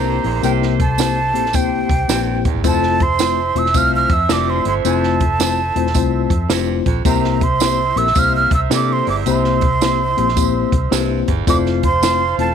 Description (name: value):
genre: uptempo 1960s-style soul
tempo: 109 BPM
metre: 4/4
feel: swing 66% on 8ths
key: F major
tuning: A4 = 436 Hz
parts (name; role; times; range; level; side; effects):
- breathy jazz flute; melody; 0.0-12.5 s; G5 to F6; -19 LUFS; right 3 dB; none
- vibraphone with medium hard mallets; second line; 0.0-12.5 s; G4 to F5; -28 LUFS; right 11 dB; none
- warm horn section; second line; 0.0-12.5 s; E4 to F5; -28 LUFS; right 13 dB; none
- mellow tine electric piano; accompaniment; 0.0-12.5 s; C3 to D5; -20 LUFS; left 13 dB; fast stereo tremolo
- clear baritone saxophone; riff; 0.0-11.8 s; E2 to C3; -27 LUFS; right 13 dB; none
- vintage muted fingered electric bass; bass; 0.0-12.5 s; E1 to C3; -21 LUFS; left 1 dB; none
- compact cocktail drum kit; drums; 0.2-12.5 s; hi-hat, kick drum, snare drum; -21 LUFS; right 2 dB; none
- tambourine; percussion; 0.4-12.2 s; none; -27 LUFS; right 16 dB; none
room: light reverb, small room ambience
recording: 1960s-style stereo with parts hard left and right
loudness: -14 LUFS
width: side -8 dB against mid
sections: 0.0-12.5 A section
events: none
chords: 0.0 C7; 2.6 Fmaj7; 7.1 C7; 11.5 Fmaj7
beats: | 0.43 0.99 1.54 2.09 | 2.64 3.19 3.74 4.30 | 4.85 5.40 5.95 6.50 | 7.05 7.61 8.16 8.71 | 9.27 9.82 10.37 10.92 | 11.48 12.03